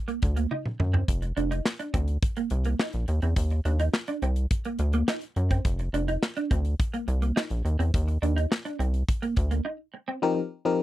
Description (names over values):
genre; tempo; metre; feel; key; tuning
early-eighties boogie funk; 105 BPM; 4/4; straight; unclear; A4 = 440 Hz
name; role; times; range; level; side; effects
clean electric guitar; riff; 0.1-10.2 s; Bb3 to Eb4; -31 LUFS; right 4 dB; ensemble chorus
modern studio drum kit; drums; 0.1-9.6 s; handclaps, hi-hat, kick drum, snare drum, toms; -27 LUFS; equal; none
rubbery square bass; bass; 0.2-9.6 s; F1 to Gb2; -25 LUFS; equal; none
FM electric piano; accompaniment; 10.2-10.8 s; F3 to Bb4; -23 LUFS; left 4 dB; chorus
room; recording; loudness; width
little or no reverb; dry, close 1970s-style studio recording; -24 LUFS; side -15 dB against mid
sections
0.0-10.2 A section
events
drum fill 0.5-1.1; break 9.7-10.2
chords
0.0 N.C.; 1.1 Fsus4; 3.1 Eb5; 5.7 Fsus4; 7.7 Eb5; 10.2 F7sus4